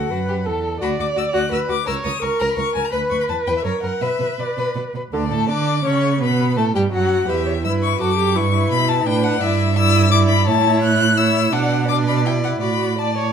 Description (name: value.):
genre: quick classical-period movement for string quartet.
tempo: 168 BPM.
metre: 3/4.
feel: straight.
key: B minor, D major from 9.4 s.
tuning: A4 = 443 Hz.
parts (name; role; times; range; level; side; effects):
rich violin; melody; 0.0-13.3 s; C#5 to F#6; -22 LUFS; left 7 dB; none.
warm violin; second line; 0.0-13.3 s; D4 to D5; -24 LUFS; left 4 dB; none.
rich viola; accompaniment; 0.0-13.3 s; D3 to D5; -22 LUFS; right 2 dB; none.
rich cello; bass; 0.0-13.3 s; C#2 to D3; -21 LUFS; right 5 dB; none.
room: moderate recital hall reverb, RT60 1.4 s.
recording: close, detailed microphones.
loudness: -16 LUFS.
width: side -7 dB against mid.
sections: 0.0-5.1 A section; 5.1-13.3 B section.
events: none.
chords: 0.0 D; 0.8 Bm/D; 1.9 C#5; 2.9 Bm; 3.3 E5; 3.7 F#; 4.0 Bm; 5.1 Aadd11/D; 6.2 B5; 7.3 Em; 8.4 Em/G; 9.4 Em7/G; 10.5 A; 11.5 Bm; 12.6 D/A.